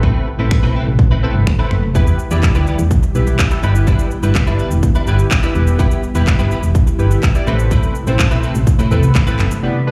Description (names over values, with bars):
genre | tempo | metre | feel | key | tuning
dance-pop | 125 BPM | 4/4 | straight | unclear | A4 = 441 Hz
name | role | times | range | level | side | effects
chorused polysynth | accompaniment | 0.0-9.9 s | B3 to D5 | -25 LUFS | equal | sidechain pumping, slapback echo
ethereal airy pad | sustained chords | 0.0-9.9 s | B2 to B4 | -25 LUFS | equal | ensemble chorus, built-in reverb, sidechain pumping
direct-recorded clean electric guitar | riff | 0.0-9.5 s | G3 to B4 | -29 LUFS | equal | ensemble chorus
solid FM bass | bass | 0.0-9.5 s | E1 to A2 | -17 LUFS | equal | sidechain pumping
house drum kit | drums | 0.0-9.6 s | finger snaps, handclaps, kick drum, shaker | -18 LUFS | equal | none
room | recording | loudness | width
digital ambience | live gig heard through the venue's PA, club reverb, faint mains hum | -15 LUFS | mono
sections
0.0-9.6 A section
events
none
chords
0.0 Amadd9; 2.0 Em; 7.5 Amadd9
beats
| 0.03 0.51 0.99 1.47 | 1.95 2.43 2.91 3.39 | 3.87 4.35 4.83 5.31 | 5.79 6.27 6.75 7.23 | 7.71 8.19 8.67 9.15 | 9.63